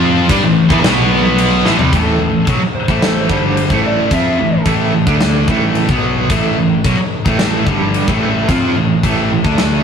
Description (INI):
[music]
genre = hard rock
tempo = 110 BPM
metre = 4/4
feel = straight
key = A minor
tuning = A4 = 440 Hz
[part]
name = cranked stack guitar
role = riff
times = 0.0-9.8 s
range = G2 to F4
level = -18 LUFS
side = right 4 dB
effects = overdrive, tremolo
[part]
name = high-gain distorted guitar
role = riff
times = 0.0-1.9 s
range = A2 to F4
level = -16 LUFS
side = left 1 dB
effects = distortion
[part]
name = scooped high-gain guitar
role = riff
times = 0.0-9.8 s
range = G2 to F4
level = -19 LUFS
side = left 5 dB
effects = distortion
[part]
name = picked electric bass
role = bass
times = 0.0-9.8 s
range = G1 to G2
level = -18 LUFS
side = equal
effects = none
[part]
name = huge arena drum kit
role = drums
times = 0.3-9.7 s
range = crash cymbal, kick drum, snare drum, toms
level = -17 LUFS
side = left 1 dB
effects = none
[part]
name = lead guitar through a small cranked amp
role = melody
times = 1.9-4.6 s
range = A4 to E5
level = -21 LUFS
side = right 2 dB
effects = overdrive
[sound]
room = moderate stone room reverb, RT60 1.4 s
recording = rough rehearsal-room recording, warm saturation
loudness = -11 LUFS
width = side -7 dB against mid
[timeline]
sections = 0.0-1.9 A section; 1.9-9.8 B section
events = drum fill 1.7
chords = 0.3 A5; 0.8 B5; 1.7 Am